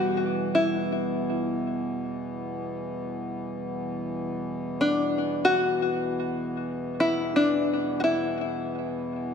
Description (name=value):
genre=world meditative, free-time meditation music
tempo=free time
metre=none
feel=none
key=E minor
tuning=A4 = 440 Hz
part: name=open-back banjo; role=melody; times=0.0-9.3 s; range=D4 to F#4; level=-25 LUFS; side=left 2 dB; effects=ping-pong delay
part: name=pedal harmonium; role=drone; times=0.0-9.3 s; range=E2 to B2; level=-31 LUFS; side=left 1 dB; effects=none
part: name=bronze singing bowl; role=texture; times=0.0-4.2 s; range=G3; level=-37 LUFS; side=right 9 dB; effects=none
room=wet church reverb, RT60 2.8 s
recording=none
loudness=-25 LUFS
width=side -7 dB against mid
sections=0.0-9.3 A section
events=none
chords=none